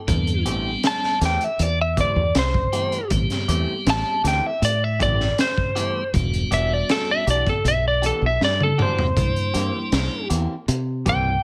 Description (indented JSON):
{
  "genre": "straight-eighth soul blues",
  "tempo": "79 BPM",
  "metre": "4/4",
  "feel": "straight",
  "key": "unclear",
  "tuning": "A4 = 435 Hz",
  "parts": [
    { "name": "lightly driven lead guitar", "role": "melody", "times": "0.0-11.4 s", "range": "A4 to A5", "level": "-25 LUFS", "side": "equal", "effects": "none" },
    { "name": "tonewheel organ", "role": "accompaniment", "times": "0.1-10.3 s", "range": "G3 to G4", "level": "-30 LUFS", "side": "equal", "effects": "slow rotary speaker" },
    { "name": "fingered electric bass", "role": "bass", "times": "0.1-11.4 s", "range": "E1 to C3", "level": "-25 LUFS", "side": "equal", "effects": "none" },
    { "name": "crunchy breakbeat drum kit", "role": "drums", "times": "0.1-11.2 s", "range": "hi-hat, kick drum, snare drum, toms", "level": "-27 LUFS", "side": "equal", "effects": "none" },
    { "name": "electric guitar through a small old amp", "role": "stabs", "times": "0.5-11.3 s", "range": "E3 to G4", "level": "-32 LUFS", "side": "equal", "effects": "phaser" }
  ],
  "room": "light reverb",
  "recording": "none",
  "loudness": "-21 LUFS",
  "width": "mono",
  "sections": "0.0-11.4 A section",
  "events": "lead electric guitar solo 0.0-11.4; drum fill 8.4-9.2",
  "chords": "0.0 Am7; 6.1 Em7; 9.2 C7"
}